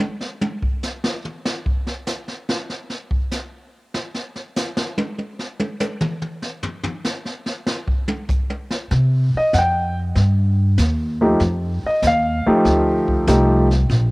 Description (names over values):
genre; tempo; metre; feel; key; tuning
jazz piano trio; 96 BPM; 4/4; swing 69% on 8ths; unclear; A4 = 440 Hz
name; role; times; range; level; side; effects
jazz brush drum kit; drums; 0.0-14.1 s; brushed snare drum, hi-hat, kick drum, snare drum, toms; -23 LUFS; equal; cassette tape
upright bass; bass; 8.9-14.1 s; Bb1 to C3; -17 LUFS; equal; none
warm grand piano; melody; 9.4-13.7 s; F3 to G5; -17 LUFS; equal; cassette tape
room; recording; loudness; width
light reverb, small room ambience; home recording on cassette; -18 LUFS; side -24 dB against mid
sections
0.0-14.1 A section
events
grand piano solo 0.0-14.1; drum solo 0.0-8.9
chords
0.0 N.C.; 8.9 Cm; 11.4 F9